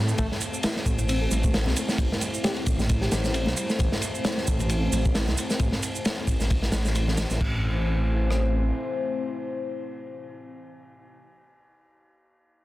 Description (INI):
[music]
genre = breakbeat, breaks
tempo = 133 BPM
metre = 4/4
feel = swing 56% on 16ths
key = A minor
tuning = A4 = 440 Hz
[part]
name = dark analog pad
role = sustained chords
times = 0.0-11.2 s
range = A3 to C5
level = -32 LUFS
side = left 1 dB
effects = chorus, phaser, sidechain pumping
[part]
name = reed electric piano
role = riff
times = 0.0-3.8 s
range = G3 to A4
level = -34 LUFS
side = left 1 dB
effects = overdrive, fast tremolo, tube saturation, vintage 12-bit sampler grit, digital delay
[part]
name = dark detuned saw bass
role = bass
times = 0.0-8.7 s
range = A1 to A2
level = -25 LUFS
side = equal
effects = none
[part]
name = shaker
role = drums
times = 0.1-7.4 s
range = none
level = -35 LUFS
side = right 6 dB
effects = none
[part]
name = crunchy breakbeat drum kit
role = drums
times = 0.2-8.4 s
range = crash cymbal, kick drum, ride cymbal, rim click, snare drum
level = -26 LUFS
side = equal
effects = none
[part]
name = congas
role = percussion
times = 0.2-7.2 s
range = none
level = -38 LUFS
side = left 3 dB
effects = none
[sound]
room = light reverb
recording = dense, heavily limited modern master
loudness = -23 LUFS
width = side -16 dB against mid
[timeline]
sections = 0.2-7.4 A section; 7.4-11.0 B section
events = break 0.0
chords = 0.2 Am